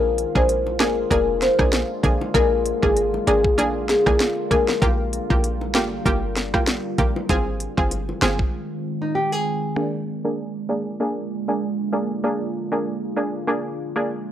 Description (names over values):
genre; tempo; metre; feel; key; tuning
dancehall; 97 BPM; 4/4; swing 56% on 16ths; unclear; A4 = 439 Hz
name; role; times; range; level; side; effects
marimba with soft mallets; melody; 0.0-4.7 s; Ab4 to C5; -21 LUFS; left 3 dB; tape echo
analog pluck; accompaniment; 0.0-14.1 s; Bb3 to Ab4; -24 LUFS; right 1 dB; chorus, low-pass filter
deep dark ambient pad; sustained chords; 0.0-14.3 s; D3 to F4; -29 LUFS; right 1 dB; chorus, built-in reverb, low-pass filter
short 808-style bass; bass; 0.0-8.5 s; F1 to Bb1; -26 LUFS; equal; none
island pop drum kit; drums; 0.2-8.5 s; hi-hat, kick drum, rim click, snare drum; -23 LUFS; equal; none
bongos; percussion; 0.4-8.4 s; none; -31 LUFS; left 2 dB; none
nylon-string guitar; arpeggios; 9.0-9.7 s; Eb4 to Ab4; -23 LUFS; right 1 dB; none
room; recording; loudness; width
little or no reverb; dry, gritty hardware recording; -19 LUFS; side -11 dB against mid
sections
0.0-9.8 A section; 9.8-14.3 B section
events
break 8.5-9.8; filter sweep 9.8-14.3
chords
0.0 Bb7; 4.8 Gm7; 7.3 Ab6; 9.8 Bb7